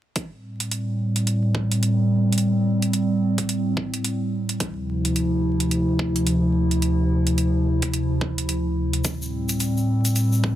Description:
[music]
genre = glitch hop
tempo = 108 BPM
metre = 4/4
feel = swing 61% on 16ths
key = A minor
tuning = A4 = 440 Hz
[part]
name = warbly tape-like pad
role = sustained chords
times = 0.5-10.6 s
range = D2 to E4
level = -20 LUFS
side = equal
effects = chorus, built-in reverb, vintage 12-bit sampler grit, sidechain pumping
[part]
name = electronic hi-hat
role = drums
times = 0.2-10.3 s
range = none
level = -27 LUFS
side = right 2 dB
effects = overdrive
[part]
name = electronic kick drum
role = drums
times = 0.2-10.6 s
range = none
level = -28 LUFS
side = equal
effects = overdrive, high-pass filter on kick, high-pass filter on room
[part]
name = egg shaker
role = percussion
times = 9.0-10.4 s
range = none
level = -31 LUFS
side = left 2 dB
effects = none
[sound]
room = light reverb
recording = dense, heavily limited modern master, vinyl crackle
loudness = -20 LUFS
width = side -12 dB against mid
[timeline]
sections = 0.2-10.6 A section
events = none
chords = 0.2 Am7; 4.6 Dm9; 9.0 Am7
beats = | 0.16 0.71 1.27 1.83 | 2.38 2.94 3.49 4.05 | 4.60 5.16 5.71 6.27 | 6.83 7.38 7.94 8.49 | 9.05 9.60 10.16

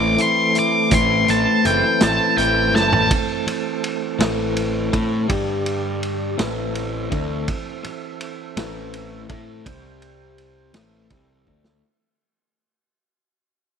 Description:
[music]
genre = psychedelic rock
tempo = 55 BPM (dotted quarters)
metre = 6/8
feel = straight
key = A minor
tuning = A4 = 443 Hz
[part]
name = octave-fuzz lead guitar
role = melody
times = 0.0-3.1 s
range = G5 to D6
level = -18 LUFS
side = right 1 dB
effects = wah, distortion, tape echo
[part]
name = tonewheel organ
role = sustained chords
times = 0.0-11.8 s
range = D3 to G5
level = -27 LUFS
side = right 13 dB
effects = slow rotary speaker
[part]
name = electric guitar through a small old amp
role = riff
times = 0.0-11.8 s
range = A2 to A4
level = -24 LUFS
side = left 8 dB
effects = harmonic tremolo
[part]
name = fuzz picked electric bass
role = bass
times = 0.0-11.8 s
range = F#1 to A2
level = -26 LUFS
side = right 2 dB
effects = overdrive
[part]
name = vintage drum kit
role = drums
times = 0.2-11.8 s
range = hi-hat, kick drum, ride cymbal, snare drum, toms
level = -25 LUFS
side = right 2 dB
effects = none
[sound]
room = moderate echo chamber reverb, RT60 2.2 s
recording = 1960s-style stereo with parts hard left and right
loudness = -17 LUFS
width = side -7 dB against mid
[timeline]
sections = 0.0-3.1 A section; 3.1-11.8 B section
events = lead electric guitar solo 0.0-3.1; drum fill 2.7-3.1, 11.5-11.8; fade-out 3.1-11.8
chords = 0.0 Am; 5.3 G5; 6.4 Am; 9.7 C5; 10.7 Am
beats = | 0.92 2.02 | 3.11 4.20 | 5.29 6.38 | 7.47 8.56 | 9.65 10.74

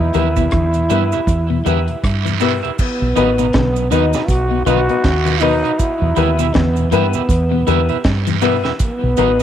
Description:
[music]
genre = roots reggae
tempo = 80 BPM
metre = 4/4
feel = swing 60% on 16ths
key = E harmonic minor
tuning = A4 = 440 Hz
[part]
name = growling trombone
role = melody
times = 0.0-9.4 s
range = B3 to F#4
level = -20 LUFS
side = right 1 dB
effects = tape echo
[part]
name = mellow tonewheel organ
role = accompaniment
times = 0.0-9.3 s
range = E2 to B3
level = -28 LUFS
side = left 8 dB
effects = none
[part]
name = deep dub fingered electric bass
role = bass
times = 0.0-9.4 s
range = A1 to G2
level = -18 LUFS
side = right 1 dB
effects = none
[part]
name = electric guitar at the edge of break-up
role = accompaniment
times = 0.1-9.4 s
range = D#4 to E5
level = -24 LUFS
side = right 10 dB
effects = tape echo
[part]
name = clean electric guitar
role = arpeggios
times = 0.1-9.4 s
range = B2 to E3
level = -24 LUFS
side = left 8 dB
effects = none
[part]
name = dark upright piano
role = stabs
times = 0.1-9.4 s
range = B3 to B4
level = -21 LUFS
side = left 8 dB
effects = none
[part]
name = deep reggae drum kit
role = drums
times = 0.1-9.4 s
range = crash cymbal, hi-hat, kick drum, rim click, snare drum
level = -20 LUFS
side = right 1 dB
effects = none
[part]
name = cabasa and guiro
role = percussion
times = 0.1-9.4 s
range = none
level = -27 LUFS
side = right 14 dB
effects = none
[sound]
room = moderate spring reverb, RT60 2.4 s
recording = 1960s-style stereo with parts hard left and right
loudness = -13 LUFS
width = side -10 dB against mid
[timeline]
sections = 0.0-2.8 A section; 2.8-9.4 B section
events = none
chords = 0.0 Em; 2.8 B; 5.8 Em; 8.8 B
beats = 0.53 1.28 2.03 | 2.79 3.54 4.29 5.04 | 5.80 6.55 7.30 8.05 | 8.80

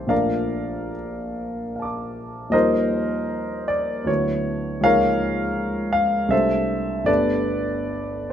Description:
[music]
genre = classical, impressionist solo piano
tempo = 66-83 BPM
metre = 3/4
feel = rubato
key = unclear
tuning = A4 = 440 Hz
[part]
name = warm grand piano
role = solo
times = 0.0-8.3 s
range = G1 to D6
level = -20 LUFS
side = equal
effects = none
[sound]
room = moderate recital hall reverb, RT60 1.4 s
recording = close, detailed microphones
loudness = -20 LUFS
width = side -9 dB against mid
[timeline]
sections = 0.0-8.3 A section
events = none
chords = 0.1 Bbmaj7; 2.5 Eb69; 4.1 D69; 4.8 C#69; 6.3 C69; 7.1 Gadd9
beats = | 0.11 0.94 1.76 | 2.53 3.31 4.08 | 4.85 5.58 6.32 | 7.08 7.89

